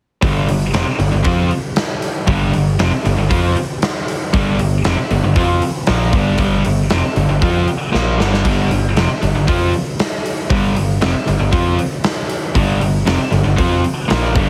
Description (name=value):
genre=hard rock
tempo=117 BPM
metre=4/4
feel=straight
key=unclear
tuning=A4 = 440 Hz
part: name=overdriven semi-hollow guitar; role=riff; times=0.2-14.5 s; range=F2 to F4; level=-21 LUFS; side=equal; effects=none
part: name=tight distorted guitar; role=riff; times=0.2-14.5 s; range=F2 to F4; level=-24 LUFS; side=equal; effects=distortion
part: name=overdriven picked electric bass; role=bass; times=0.2-14.5 s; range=F1 to F2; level=-21 LUFS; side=equal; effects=none
part: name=huge arena drum kit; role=drums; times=0.2-14.5 s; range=hi-hat, kick drum, snare drum, splash cymbal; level=-21 LUFS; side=equal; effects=none
room=studio reverb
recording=heavily compressed radio sound, multiband compression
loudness=-16 LUFS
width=mono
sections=0.2-14.5 A section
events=drum fill 7.9-8.4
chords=0.2 G5